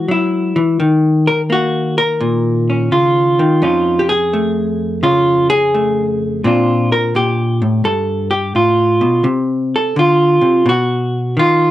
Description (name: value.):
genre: solo jazz.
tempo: 85 BPM.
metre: 4/4.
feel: swing 66% on 8ths.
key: unclear.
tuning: A4 = 440 Hz.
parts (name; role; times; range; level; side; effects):
vintage hollow-body jazz guitar; solo; 0.0-11.7 s; F2 to Bb4; -12 LUFS; equal; cassette tape.
room: light reverb.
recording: home recording on cassette.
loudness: -12 LUFS.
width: side -13 dB against mid.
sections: 0.0-11.7 A section.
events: none.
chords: 0.0 Eadd9; 0.8 Ebsus2; 3.6 F7alt; 6.4 Bbmaj9; 7.8 G7; 9.2 F6/C; 10.7 B.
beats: 0.09 | 0.79 1.50 2.20 2.91 | 3.61 4.32 5.02 5.72 | 6.43 7.13 7.84 8.54 | 9.24 9.95 10.65 11.36.